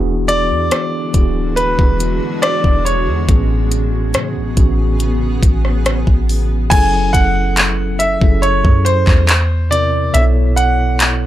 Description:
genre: contemporary R&B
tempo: 70 BPM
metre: 4/4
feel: straight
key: F# minor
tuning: A4 = 440 Hz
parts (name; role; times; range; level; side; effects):
- mellow tine electric piano; accompaniment; 0.0-11.3 s; A2 to D5; -20 LUFS; equal; medium stereo tremolo
- granular cloud pad; sustained chords; 1.0-6.7 s; C#3 to G#4; -27 LUFS; equal; built-in reverb
- soft 808-style bass; bass; 0.0-11.3 s; D1 to C#3; -16 LUFS; equal; none
- clear grand piano; melody; 0.3-11.3 s; B4 to G#5; -18 LUFS; equal; none
- smooth R&B drum kit; drums; 0.3-11.2 s; crash cymbal, handclaps, hi-hat, kick drum, rim click; -14 LUFS; equal; none
room: digital ambience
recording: dry, gritty hardware recording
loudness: -12 LUFS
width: side -13 dB against mid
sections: 0.0-6.7 A section; 6.7-11.3 B section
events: none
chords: 0.0 E9; 3.3 Amaj9; 6.7 F#m9; 9.3 C9; 10.1 B9sus4

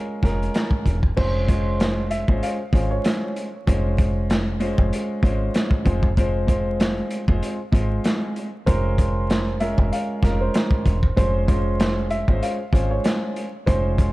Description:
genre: hip hop, boom-bap hip-hop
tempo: 96 BPM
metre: 4/4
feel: swing 56% on 16ths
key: unclear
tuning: A4 = 442 Hz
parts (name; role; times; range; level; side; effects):
- dark baby grand piano; accompaniment; 0.0-14.1 s; Ab3 to C5; -26 LUFS; equal; cassette tape, high-pass filter, low-pass filter
- deep dub fingered electric bass; bass; 0.2-14.1 s; E1 to Ab1; -23 LUFS; equal; none
- crunchy breakbeat drum kit; drums; 0.2-14.1 s; crash cymbal, hi-hat, kick drum, snare drum; -21 LUFS; equal; none
- dark upright piano; melody; 1.2-3.0, 8.7-14.1 s; C5 to F5; -28 LUFS; right 1 dB; high-pass filter, low-pass filter, tape echo
room: studio ambience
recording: vinyl crackle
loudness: -19 LUFS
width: side -19 dB against mid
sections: 0.0-1.2 A section; 1.2-14.1 B section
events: none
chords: 0.0 Bbm7/F; 1.2 Dbmaj7/F; 5.9 Fm; 8.7 Bbm7/F; 11.2 Dbmaj7/F

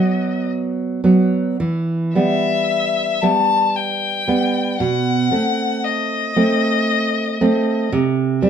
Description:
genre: romantic duo for violin and classical guitar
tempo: 52-60 BPM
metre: 3/4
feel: rubato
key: E minor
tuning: A4 = 444 Hz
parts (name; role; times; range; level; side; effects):
- rich violin; melody; 0.0-8.5 s; D#5 to A5; -20 LUFS; left 6 dB; none
- nylon-string guitar; accompaniment; 0.0-8.5 s; B2 to C4; -17 LUFS; right 2 dB; none
room: moderate studio reverb, RT60 0.6 s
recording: band playing live in one room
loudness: -16 LUFS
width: side -8 dB against mid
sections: 0.0-8.5 A section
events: none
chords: 0.0 B; 1.6 Em; 4.8 B7b9; 7.9 C5

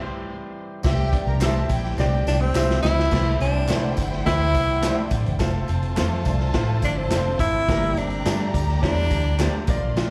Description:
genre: uptempo 1960s-style soul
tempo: 105 BPM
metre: 4/4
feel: straight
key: C mixolydian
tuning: A4 = 442 Hz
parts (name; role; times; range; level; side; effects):
- percussive tonewheel organ; sustained chords; 0.0-10.1 s; D3 to A4; -39 LUFS; equal; none
- warm studio violin section; second line; 0.8-10.1 s; E4 to C6; -36 LUFS; equal; slapback echo, tape echo
- clear baby grand piano; accompaniment; 0.8-10.1 s; G2 to E5; -32 LUFS; equal; slapback echo
- vintage muted fingered electric bass; bass; 0.8-10.1 s; F1 to C3; -26 LUFS; equal; none
- raw garage drum kit; drums; 0.8-10.1 s; crash cymbal, hi-hat, kick drum, snare drum; -28 LUFS; equal; none
- tambourine and handclaps; percussion; 0.8-10.1 s; none; -42 LUFS; equal; none
- electric guitar through a small old amp; riff; 1.1-9.9 s; C4 to E4; -39 LUFS; equal; none
- electric guitar through a small old amp; stabs; 1.4-9.5 s; A3 to D5; -39 LUFS; equal; none
- breathy tenor saxophone; melody; 2.3-9.6 s; C4 to E4; -26 LUFS; equal; none
room: small room ambience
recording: live gig heard through the venue's PA, club reverb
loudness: -22 LUFS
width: mono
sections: 0.8-3.1 A section; 3.1-10.1 B section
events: band accent 0.0-0.8; drum fill 2.0-3.1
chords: 0.0 C; 3.1 C6; 5.4 F; 7.7 Gmadd9

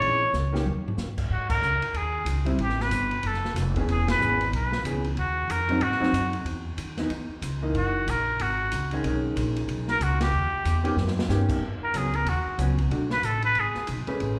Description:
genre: jazz, small-group swing and bop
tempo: 186 BPM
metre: 4/4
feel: swing 61% on 8ths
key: G# minor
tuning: A4 = 440 Hz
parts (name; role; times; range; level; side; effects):
- trumpet with straight mute; melody; 0.0-13.9 s; F#4 to C#5; -29 LUFS; equal; none
- hollow-body jazz guitar; accompaniment; 0.0-14.4 s; D#3 to B4; -33 LUFS; equal; none
- upright bass; bass; 0.0-14.4 s; E1 to G#2; -30 LUFS; equal; none
- open jazz drum kit; drums; 0.0-14.3 s; crash cymbal, hi-hat, kick drum, ride cymbal, snare drum, toms; -37 LUFS; equal; none
room: wet recital hall reverb, RT60 1.7 s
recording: recorded in a church or concert hall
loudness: -26 LUFS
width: mono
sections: 0.0-1.3 A section; 1.3-11.6 B section; 11.6-14.4 C section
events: drum fill 0.3-1.0, 11.0-11.3; band accent 1.5, 4.0, 10.2; muted trumpet solo 11.6-14.4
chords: 0.0 A#m7b5; 0.6 D#; 1.3 G#sus24; 2.6 Gadd9; 3.2 Fmaj7#5; 3.9 E6; 5.2 D#madd9; 5.8 G#7; 6.5 C#madd9; 7.7 F#13; 9.0 B69; 10.3 D#7alt; 11.6 G#m7; 12.9 Bm7; 13.5 G#madd11

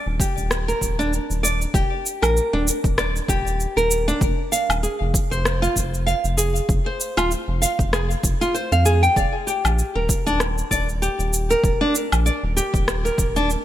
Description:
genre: organic downtempo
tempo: 97 BPM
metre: 4/4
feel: swing 56% on 16ths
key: unclear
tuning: A4 = 439 Hz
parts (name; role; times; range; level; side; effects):
- nylon-string guitar; arpeggios; 0.0-13.5 s; D4 to G5; -22 LUFS; equal; vintage 12-bit sampler grit, ping-pong delay
- round analog bass; bass; 0.1-13.6 s; Eb1 to F2; -23 LUFS; equal; sidechain pumping
- electronic cabasa, rim click and woodblock; drums; 0.2-13.6 s; none; -25 LUFS; equal; none
- electronic kick drum; drums; 0.2-13.3 s; none; -23 LUFS; equal; none
room: light reverb, digital ambience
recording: bright 1980s-style digital production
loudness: -18 LUFS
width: side -12 dB against mid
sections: 0.0-13.6 A section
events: none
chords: 0.0 Ebmaj7; 4.2 Fm; 9.2 Ebmaj7

